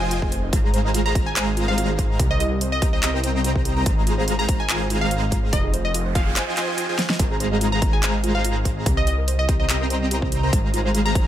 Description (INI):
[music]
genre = future bass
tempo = 144 BPM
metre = 4/4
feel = swing 53% on 16ths, half-time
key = Ab major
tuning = A4 = 441 Hz
[part]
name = glassy wavetable pluck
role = melody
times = 0.0-11.2 s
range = Eb5 to Bb5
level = -29 LUFS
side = equal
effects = chorus, sidechain pumping, dub echo
[part]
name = airy dreamy lead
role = arpeggios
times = 0.0-11.3 s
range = Ab5 to Bb5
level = -33 LUFS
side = left 1 dB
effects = chorus, sidechain pumping
[part]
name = soft round pluck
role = arpeggios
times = 0.0-11.2 s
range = F4 to Eb5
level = -32 LUFS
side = right 4 dB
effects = chorus, sidechain pumping, dub echo
[part]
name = dense compressed supersaw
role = riff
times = 0.0-11.3 s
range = Ab3 to Bb5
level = -26 LUFS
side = equal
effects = cassette tape, sidechain pumping
[part]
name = wide detuned saw bass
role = bass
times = 0.0-11.3 s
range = F1 to C2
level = -24 LUFS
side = equal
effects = chorus, sidechain pumping
[part]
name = big-room dance drum kit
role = drums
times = 0.1-11.2 s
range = handclaps, hi-hat, snare drum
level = -26 LUFS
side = equal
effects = overdrive, studio reverb
[part]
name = electronic kick drum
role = drums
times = 0.2-11.2 s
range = none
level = -22 LUFS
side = equal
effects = overdrive, studio reverb
[part]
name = noise sweep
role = sound effects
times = 5.8-7.2 s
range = none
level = -35 LUFS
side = right 4 dB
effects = none
[sound]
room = little or no reverb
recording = none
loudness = -19 LUFS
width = side -11 dB against mid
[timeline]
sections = 0.0-11.3 A section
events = noise sweep 5.8-7.2; drum fill 7.0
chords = 0.0 Fm7; 0.5 Ab6; 2.2 Cm7; 3.9 Ab6; 5.5 Fm7; 7.2 Ab6; 8.9 Cm7; 10.5 Ab6